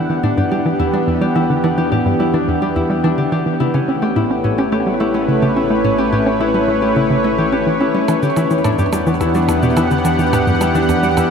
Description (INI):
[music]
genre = ambient, sequencer-driven space music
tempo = 107 BPM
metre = 4/4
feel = straight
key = E dorian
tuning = A4 = 440 Hz
[part]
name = lush unison pad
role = sustained chords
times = 0.0-11.3 s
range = E3 to F#5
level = -17 LUFS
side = right 1 dB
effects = chorus, shimmer reverb
[part]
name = concert harp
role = arpeggios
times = 0.0-11.3 s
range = C#4 to G4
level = -21 LUFS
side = left 6 dB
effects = auto-pan, ping-pong delay, shimmer reverb
[part]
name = hollow square pluck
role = riff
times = 0.0-11.3 s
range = E2 to C#4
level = -18 LUFS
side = equal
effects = chorus, vintage 12-bit sampler grit, ping-pong delay
[part]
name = analog drone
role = bass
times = 0.0-11.3 s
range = A1 to E2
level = -29 LUFS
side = equal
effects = chorus
[part]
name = shaker and percussion blips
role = percussion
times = 8.1-11.3 s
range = none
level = -28 LUFS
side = right 5 dB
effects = ping-pong delay
[sound]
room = wet huge ambient reverb, RT60 6.9 s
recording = none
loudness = -13 LUFS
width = side -6 dB against mid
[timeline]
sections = 0.0-11.3 A section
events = fade-in on synth drone 0.0-11.3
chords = 0.0 Em7; 3.6 A7; 8.1 Em7